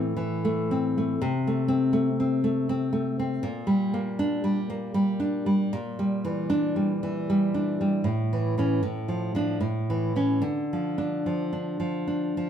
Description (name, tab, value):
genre	romantic piece for solo classical guitar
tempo	78 BPM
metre	3/4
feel	uneven beats, rubato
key	unclear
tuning	A4 = 441 Hz
part	nylon-string guitar	solo	0.0-12.5 s	A2 to D4	-24 LUFS	equal	none
room	moderate large studio reverb, RT60 1.1 s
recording	band playing live in one room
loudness	-24 LUFS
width	side -9 dB against mid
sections	0.0-12.5 A section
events	none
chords	0.0 Am; 1.2 Am/C; 3.4 Gm/Bb; 5.7 Em7b5/Bb; 8.1 A; 8.8 Dm/A; 9.6 A; 10.4 Dm